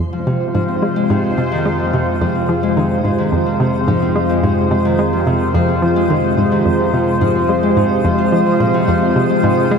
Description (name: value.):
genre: ambient, sequencer-driven space music.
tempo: 108 BPM.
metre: 4/4.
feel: straight.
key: F minor.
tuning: A4 = 436 Hz.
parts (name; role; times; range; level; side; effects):
sweeping resonant pad; sustained chords; 0.0-9.8 s; C3 to C5; -16 LUFS; right 1 dB; chorus.
hollow square pluck; riff; 0.0-9.8 s; F2 to Ab3; -19 LUFS; right 1 dB; chorus, analog delay.
analog drone; bass; 1.2-9.8 s; F2; -26 LUFS; equal; chorus.
twinkling granular texture; texture; 0.0-9.8 s; Eb5; -34 LUFS; equal; built-in reverb, analog chorus.
Celtic harp; arpeggios; 0.1-9.8 s; C3 to F4; -19 LUFS; left 4 dB; auto-pan, analog delay.
room: wet cathedral reverb, RT60 5.4 s.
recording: dreamy mix soaked in reverb.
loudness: -13 LUFS.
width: side -6 dB against mid.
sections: 0.0-9.8 A section.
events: fade-in on synth texture 0.0-9.8.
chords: 0.0 Fm.